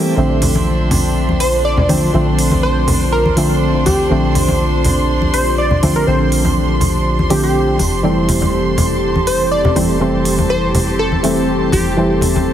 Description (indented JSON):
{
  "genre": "deep house",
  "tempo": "122 BPM",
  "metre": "4/4",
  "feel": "swing 54% on 16ths",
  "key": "Bb lydian",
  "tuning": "A4 = 440 Hz",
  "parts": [
    { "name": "warbly tape-like pad", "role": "sustained chords", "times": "0.5-12.5 s", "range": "C4 to A4", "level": "-24 LUFS", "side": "equal", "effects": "chorus, built-in reverb, phaser" },
    { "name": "percussive organ stab", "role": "stabs", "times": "0.0-12.5 s", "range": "D3 to C4", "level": "-17 LUFS", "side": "equal", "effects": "analog chorus, digital delay" },
    { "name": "clear studio violin section", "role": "texture", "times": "0.0-12.5 s", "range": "C6 to D6", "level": "-26 LUFS", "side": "right 2 dB", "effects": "none" },
    { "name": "rich chamber string section", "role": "texture", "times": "0.0-12.5 s", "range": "D4 to A5", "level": "-26 LUFS", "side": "left 1 dB", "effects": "none" },
    { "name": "rubbery square bass", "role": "bass", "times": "0.2-12.5 s", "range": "F1 to Bb1", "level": "-20 LUFS", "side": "equal", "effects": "tube saturation" },
    { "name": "electronic hi-hat", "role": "drums", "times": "0.4-12.3 s", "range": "none", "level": "-24 LUFS", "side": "right 1 dB", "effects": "none" },
    { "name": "congas", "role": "percussion", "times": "0.4-12.4 s", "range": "none", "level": "-19 LUFS", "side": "equal", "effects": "none" },
    { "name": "plucky unison lead", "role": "melody", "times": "1.4-12.2 s", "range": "G4 to D5", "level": "-20 LUFS", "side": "equal", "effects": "digital delay" }
  ],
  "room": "light reverb, studio ambience",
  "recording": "heavily compressed radio sound, multiband compression",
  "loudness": "-12 LUFS",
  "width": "side -10 dB against mid",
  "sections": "0.0-12.5 A section",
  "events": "none",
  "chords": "0.2 Bbmaj9; 7.8 Fmaj9"
}